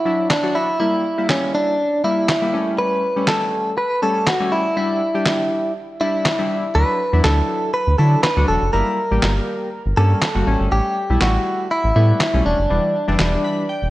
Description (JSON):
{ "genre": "dance-pop", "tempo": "121 BPM", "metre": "4/4", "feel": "straight", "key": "D major", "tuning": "A4 = 439 Hz", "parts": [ { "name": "direct-recorded clean electric guitar", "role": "melody", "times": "0.0-13.9 s", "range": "C#4 to B4", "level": "-20 LUFS", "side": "equal", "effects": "tape echo" }, { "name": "warm analog keys", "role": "accompaniment", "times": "0.1-13.9 s", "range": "E3 to B5", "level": "-23 LUFS", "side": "left 2 dB", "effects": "chorus" }, { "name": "electronic snare drum and handclaps", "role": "drums", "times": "0.3-13.3 s", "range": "none", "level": "-22 LUFS", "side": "equal", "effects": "none" }, { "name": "round analog bass", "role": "bass", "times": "6.8-13.9 s", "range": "E1 to D3", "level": "-17 LUFS", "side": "equal", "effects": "none" } ], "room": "moderate lush hall reverb, RT60 1.7 s", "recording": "worn, warbling old tape, cassette tape, warbly pitch drift", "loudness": "-16 LUFS", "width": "side -16 dB against mid", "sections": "0.0-13.9 A section", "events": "break 12.7-13.9; synth keys fill 13.2-13.9", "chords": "0.0 Dadd9; 0.8 Gm6; 2.5 A7; 4.8 Em7; 6.8 Dadd9; 8.7 Gm6; 10.5 A7; 12.7 Em7", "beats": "0.30 | 0.80 1.30 1.79 2.29 | 2.78 3.28 3.78 4.27 | 4.77 5.26 5.76 6.26 | 6.75 7.25 7.74 8.24 | 8.73 9.23 9.73 10.22 | 10.72 11.21 11.71 12.21 | 12.70 13.20 13.69" }